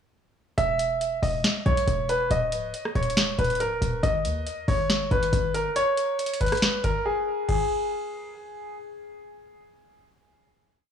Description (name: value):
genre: hip hop, trap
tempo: 139 BPM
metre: 4/4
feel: half-time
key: G# minor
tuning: A4 = 440 Hz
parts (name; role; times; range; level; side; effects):
- bright concert grand piano; melody; 0.6-8.7 s; G#4 to E5; -26 LUFS; equal; low-pass filter, tape echo
- short 808-style bass; bass; 0.6-5.8 s; C#1 to D#2; -26 LUFS; equal; none
- booming analog drum machine; drums; 0.6-7.7 s; crash cymbal, hi-hat, kick drum, rim click, snare drum; -27 LUFS; equal; vintage 12-bit sampler grit
room: digital ambience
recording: dry, gritty hardware recording, transformer saturation, studio reverb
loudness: -22 LUFS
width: side -8 dB against mid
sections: 0.6-7.5 hook; 7.5-10.9 final note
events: break 7.1-7.5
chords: 0.6 E5; 2.3 D#5; 4.0 G#m; 5.8 N.C.